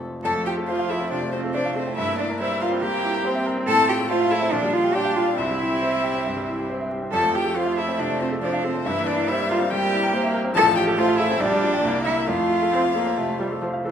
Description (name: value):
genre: quick classical-period movement for piano quartet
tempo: 139 BPM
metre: 4/4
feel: straight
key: F major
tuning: A4 = 440 Hz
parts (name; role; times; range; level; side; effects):
- warm violin; melody; 0.0-13.6 s; C5 to A5; -26 LUFS; left 8 dB; none
- bright baby grand piano; accompaniment; 0.0-13.9 s; F1 to F5; -26 LUFS; left 1 dB; none
- rich viola; accompaniment; 0.0-13.9 s; E3 to D4; -28 LUFS; right 1 dB; none
- warm cello; second line; 0.2-13.6 s; C4 to A4; -24 LUFS; right 3 dB; none
room: wet recital hall reverb, RT60 1.4 s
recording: minimal, uncompressed stereo recording, vinyl crackle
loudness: -20 LUFS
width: side -8 dB against mid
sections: 0.3-13.9 A section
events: none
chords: 0.3 F; 2.0 C7/G; 3.7 F/A; 4.5 Gm7/Bb; 5.4 C; 7.1 F; 8.9 C7/G; 10.6 F/A; 11.4 Gm7/Bb; 11.8 C7; 12.3 F